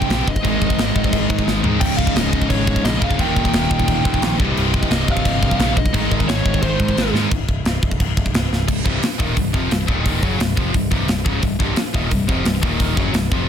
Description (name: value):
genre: heavy metal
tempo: 175 BPM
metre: 4/4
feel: straight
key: C phrygian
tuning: A4 = 440 Hz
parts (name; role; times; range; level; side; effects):
- lead guitar through a small cranked amp; melody; 0.0-7.1 s; C5 to G5; -25 LUFS; right 2 dB; overdrive, ping-pong delay
- rich symphonic string section; sustained chords; 0.0-7.3 s; Ab3 to G5; -34 LUFS; left 1 dB; none
- distorted electric guitar; riff; 0.0-13.5 s; C2 to Ab3; -25 LUFS; right 15 dB; overdrive
- fuzz guitar; riff; 0.0-7.3 s; C2 to Ab3; -25 LUFS; right 1 dB; distortion
- heavy high-gain guitar; riff; 0.0-13.5 s; C2 to Ab3; -23 LUFS; left 16 dB; distortion
- tight metal drum kit; drums; 0.0-13.4 s; china cymbal, crash cymbal, hi-hat, kick drum, snare drum, toms; -20 LUFS; equal; none
- growling picked electric bass; bass; 0.1-13.5 s; C1 to Ab2; -23 LUFS; equal; overdrive
room: little or no reverb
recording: dense, heavily limited modern master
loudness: -16 LUFS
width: side -8 dB against mid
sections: 0.0-7.3 A section; 7.3-8.7 B section; 8.7-13.5 C section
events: drum fill 1.5-1.8, 7.1, 8.5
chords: 0.4 Ab; 1.8 Db; 3.2 Eb; 4.4 Cm; 5.9 Ab; 7.3 N.C.; 8.7 Cm; 9.9 Eb5; 10.2 Cm; 12.6 Eb5; 13.0 C5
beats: 0.10 | 0.44 0.78 1.13 1.47 | 1.81 2.16 2.50 2.85 | 3.19 3.53 3.88 4.22 | 4.56 4.91 5.25 5.59 | 5.94 6.28 6.62 6.97 | 7.31 7.65 8.00 8.34 | 8.68 9.03 9.37 9.71 | 10.06 10.40 10.74 11.09 | 11.43 11.77 12.12 12.46 | 12.80 13.14 13.48